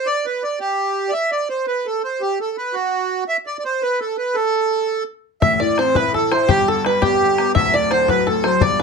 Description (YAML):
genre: celtic folk, Celtic jig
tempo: 112 BPM (dotted quarters)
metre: 6/8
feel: straight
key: A dorian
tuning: A4 = 441 Hz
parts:
  - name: accordion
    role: melody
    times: 0.0-8.8 s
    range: F#4 to E5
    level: -18 LUFS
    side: right 3 dB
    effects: none
  - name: bluegrass banjo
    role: second line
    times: 5.4-8.8 s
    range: G4 to E5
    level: -22 LUFS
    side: equal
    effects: none
  - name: bright upright piano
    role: accompaniment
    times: 5.4-8.8 s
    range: D1 to E4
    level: -22 LUFS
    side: left 8 dB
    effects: none
  - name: bodhran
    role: percussion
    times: 5.4-8.7 s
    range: none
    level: -23 LUFS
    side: left 6 dB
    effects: none
room: moderate small room reverb, RT60 0.5 s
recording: none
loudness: -16 LUFS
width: side -5 dB against mid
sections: 0.0-5.4 A section; 5.4-8.8 A section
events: none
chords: 0.0 N.C.; 5.4 Am; 6.5 G; 7.6 D